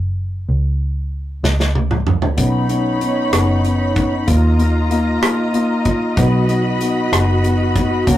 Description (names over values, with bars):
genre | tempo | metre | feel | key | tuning
six-eight pop ballad | 63 BPM (dotted quarters) | 6/8 | straight | unclear | A4 = 440 Hz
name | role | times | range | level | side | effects
vintage muted fingered electric bass | bass | 0.0-8.2 s | F#1 to D#2 | -18 LUFS | equal | none
natural country drum kit | drums | 1.4-8.2 s | hi-hat, kick drum, rim click, snare drum, toms | -19 LUFS | right 1 dB | none
felt-muted upright piano | accompaniment | 2.4-8.2 s | A#3 to F#4 | -18 LUFS | left 2 dB | none
rich studio string section | sustained chords | 2.4-8.2 s | D#4 to B5 | -22 LUFS | right 1 dB | none
room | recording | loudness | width
wet booth ambience, RT60 0.2 s | rough rehearsal-room recording, tube saturation | -14 LUFS | side -13 dB against mid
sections
0.0-8.2 A section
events
drum fill 1.4-2.4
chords
0.5 N.C.; 2.4 Badd9; 4.3 D#sus2; 6.2 B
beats
| 0.49 1.44 | 2.38 3.33 | 4.28 5.23 | 6.18 7.12 | 8.07